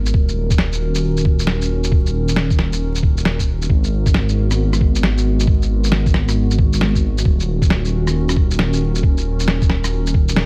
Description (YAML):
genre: future garage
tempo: 135 BPM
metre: 4/4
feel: swing 64% on 16ths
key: unclear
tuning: A4 = 440 Hz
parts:
  - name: warbly tape-like pad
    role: sustained chords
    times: 0.0-10.5 s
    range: D#3 to A#4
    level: -26 LUFS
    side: equal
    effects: chorus, built-in reverb, sidechain pumping
  - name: dark detuned saw bass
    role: bass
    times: 0.0-10.5 s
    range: D#1 to G#1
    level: -21 LUFS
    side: equal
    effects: sidechain pumping
  - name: electronic kick drum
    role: drums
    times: 0.1-10.3 s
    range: none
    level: -19 LUFS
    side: equal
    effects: studio reverb
  - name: electronic shaker, snare drum and rim click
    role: drums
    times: 0.1-10.5 s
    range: none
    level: -23 LUFS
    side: equal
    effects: studio reverb
room: little or no reverb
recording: vinyl crackle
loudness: -17 LUFS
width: mono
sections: 0.0-10.5 A section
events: none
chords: 0.1 D#m7; 3.7 G#m9; 7.3 D#m7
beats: | 0.14 0.59 1.03 1.48 | 1.92 2.36 2.81 3.25 | 3.70 4.14 4.59 5.03 | 5.47 5.92 6.36 6.81 | 7.25 7.70 8.14 8.59 | 9.03 9.47 9.92 10.36